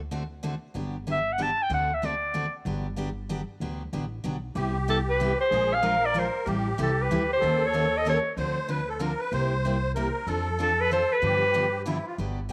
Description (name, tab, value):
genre	acoustic string swing (jazz manouche)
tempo	189 BPM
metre	3/4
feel	swing 61% on 8ths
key	G major, C major from 4.6 s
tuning	A4 = 440 Hz
part	upright bass	bass	0.0-12.5 s	G1 to G2	-35 LUFS	equal	none
part	picked steel-string acoustic guitar	accompaniment	0.1-12.5 s	C3 to Bb4	-34 LUFS	equal	none
part	bright clarinet	melody	1.1-2.5, 4.9-8.3, 10.6-11.9 s	A4 to A5	-27 LUFS	equal	none
part	musette accordion	second line	4.6-12.2 s	E4 to C5	-34 LUFS	equal	none
room	light reverb, studio reverb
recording	none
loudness	-27 LUFS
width	mono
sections	0.0-4.6 A section; 4.6-12.2 B section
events	none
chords	0.0 D7; 0.7 Gmaj7; 1.7 D7; 2.7 Gmaj7; 4.6 Cmaj7; 5.5 Bb7; 6.5 Am7; 7.4 Eb7#11; 8.4 Dm7; 9.3 C7; 10.3 F6; 11.2 G7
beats	0.11 0.43 | 0.75 1.06 1.38 | 1.70 2.02 2.34 | 2.66 2.97 3.29 | 3.61 3.93 4.25 | 4.56 4.88 5.20 | 5.52 5.83 6.15 | 6.47 6.79 7.10 | 7.42 7.74 8.06 | 8.37 8.69 9.01 | 9.32 9.64 9.96 | 10.28 10.59 10.91 | 11.23 11.54 11.86 | 12.18 12.50